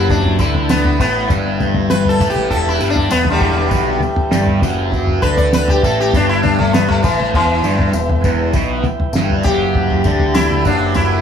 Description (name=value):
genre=psychedelic rock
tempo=99 BPM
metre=4/4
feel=straight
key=E minor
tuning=A4 = 440 Hz
part: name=sitar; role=melody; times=0.0-11.2 s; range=D3 to D5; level=-18 LUFS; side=left 2 dB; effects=tape echo
part: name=overdriven combo organ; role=sustained chords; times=0.0-11.2 s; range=E4 to G5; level=-27 LUFS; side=right 6 dB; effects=none
part: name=fuzz guitar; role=riff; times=0.0-11.2 s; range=E2 to D4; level=-19 LUFS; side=equal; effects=distortion, phaser
part: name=growling picked electric bass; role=bass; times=0.0-11.2 s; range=E1 to D2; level=-20 LUFS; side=left 1 dB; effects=overdrive
part: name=cloth-damped thuddy drum kit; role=drums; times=0.1-11.1 s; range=kick drum, snare drum, toms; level=-18 LUFS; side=equal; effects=none
part: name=tambourine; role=percussion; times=0.1-11.1 s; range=none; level=-35 LUFS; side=left 10 dB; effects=none
room=light reverb, studio reverb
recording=small room ambience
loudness=-13 LUFS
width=side -8 dB against mid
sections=0.0-11.2 A section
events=sitar solo 0.0-11.2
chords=0.0 Em